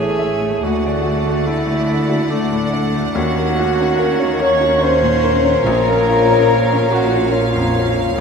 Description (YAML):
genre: classical, romantic movement for piano and orchestra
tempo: 72 BPM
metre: 3/4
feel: rubato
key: Bb minor from 3.2 s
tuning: A4 = 438 Hz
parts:
  - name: clear grand piano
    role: melody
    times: 0.0-8.2 s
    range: Bb1 to E5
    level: -21 LUFS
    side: left 3 dB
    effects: none
  - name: clear symphonic violin section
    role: melody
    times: 0.0-8.2 s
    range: E5 to F#5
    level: -31 LUFS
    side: right 3 dB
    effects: none
  - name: bright small flute group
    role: second line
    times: 0.0-8.2 s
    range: Db5 to Db6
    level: -25 LUFS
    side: left 1 dB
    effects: none
  - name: clear clarinet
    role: second line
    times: 0.0-8.2 s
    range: Db5 to E5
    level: -28 LUFS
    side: left 3 dB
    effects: none
  - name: warm cor anglais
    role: second line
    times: 0.0-8.2 s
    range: Db4 to Db5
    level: -28 LUFS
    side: left 1 dB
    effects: none
  - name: warm symphonic violin section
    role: second line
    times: 0.0-8.2 s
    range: Bb4 to D5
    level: -31 LUFS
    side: equal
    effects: none
  - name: rich symphonic viola section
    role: accompaniment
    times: 0.0-8.2 s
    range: A3 to Db4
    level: -26 LUFS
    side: right 3 dB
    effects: none
  - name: warm bassoon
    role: accompaniment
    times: 0.0-8.2 s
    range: A3 to Bb3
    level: -28 LUFS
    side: right 4 dB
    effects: none
  - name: mellow French horn section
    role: sustained chords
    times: 0.0-8.2 s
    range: Db4 to Db5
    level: -18 LUFS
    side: equal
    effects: stereo widening
  - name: warm symphonic cello section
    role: bass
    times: 0.0-8.2 s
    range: Db2 to Eb3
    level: -25 LUFS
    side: equal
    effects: none
  - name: warm symphonic double bass section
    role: bass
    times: 0.0-8.2 s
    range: A1 to Eb2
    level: -24 LUFS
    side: equal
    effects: none
  - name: timpani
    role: percussion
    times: 5.6-6.9 s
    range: Bb2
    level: -31 LUFS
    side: equal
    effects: none
room: wet cathedral reverb, RT60 6.3 s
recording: in a vast, echoing space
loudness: -14 LUFS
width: side -6 dB against mid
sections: 0.0-8.2 A section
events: none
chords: 0.0 A; 0.6 D; 3.2 Ebm7; 5.7 Bbm